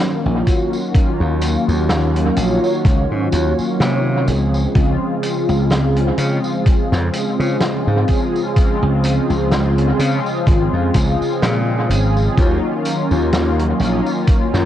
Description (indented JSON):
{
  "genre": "vaporwave",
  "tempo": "63 BPM",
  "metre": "4/4",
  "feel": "swing 55% on 16ths",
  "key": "Db major",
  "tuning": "A4 = 439 Hz",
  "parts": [
    { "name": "mellow synth brass", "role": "accompaniment", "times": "0.0-14.7 s", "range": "Db3 to Db5", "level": "-18 LUFS", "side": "equal", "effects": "analog chorus, analog delay" },
    { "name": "slap bass", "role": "bass", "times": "0.3-14.7 s", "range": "Ab1 to Db3", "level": "-18 LUFS", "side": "equal", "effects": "none" },
    { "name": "electronic kick drum", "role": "drums", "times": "0.5-14.5 s", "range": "none", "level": "-15 LUFS", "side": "equal", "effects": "vintage 12-bit sampler grit" },
    { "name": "loose indie drum kit", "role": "drums", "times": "0.5-14.7 s", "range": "hi-hat, snare drum, tambourine", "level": "-24 LUFS", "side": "equal", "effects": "vintage 12-bit sampler grit, analog delay" }
  ],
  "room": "light reverb, small room ambience",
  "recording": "echo-heavy mix, cassette tape",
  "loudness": "-14 LUFS",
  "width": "side -11 dB against mid",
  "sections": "0.0-14.7 A section",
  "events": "none",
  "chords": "0.0 Ebm9; 4.3 Dbmaj7; 12.4 Ebm9"
}